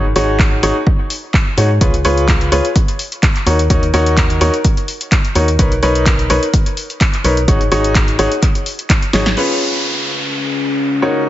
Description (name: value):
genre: piano house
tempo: 127 BPM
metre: 4/4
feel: swing 54% on 16ths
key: unclear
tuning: A4 = 442 Hz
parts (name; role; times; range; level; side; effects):
- clear concert grand piano; riff; 0.0-11.3 s; Db4 to Db5; -17 LUFS; left 1 dB; sidechain pumping, low-pass filter, dub echo
- organ-like FM bass; bass; 0.0-9.3 s; Ab1 to Ab2; -17 LUFS; equal; sidechain pumping
- punchy analog drum machine; drums; 0.2-9.5 s; crash cymbal, handclaps, hi-hat, snare drum; -20 LUFS; equal; none
- electronic kick drum; drums; 0.4-9.0 s; none; -14 LUFS; equal; none
- downlifter; sound effects; 9.4-11.3 s; none; -20 LUFS; equal; none
- deep dark ambient pad; texture; 10.0-11.3 s; Db4 to F5; -19 LUFS; left 3 dB; chorus, built-in reverb, sidechain pumping
room: light reverb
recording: heavily compressed radio sound, nothing above 7.8 kHz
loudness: -12 LUFS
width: side -13 dB against mid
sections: 0.0-9.4 A section; 9.4-11.3 B section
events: drum fill 9.1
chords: 0.0 Ab7sus4; 1.8 Db7; 3.5 Ebm7; 5.6 Bmaj9; 7.5 Ab7sus4; 9.4 Db7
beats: 0.39 0.87 1.34 | 1.81 2.28 2.76 3.23 | 3.70 4.17 4.65 5.12 | 5.59 6.06 6.54 7.01 | 7.48 7.95 8.43 8.90 | 9.37 9.84 10.31 10.79 | 11.26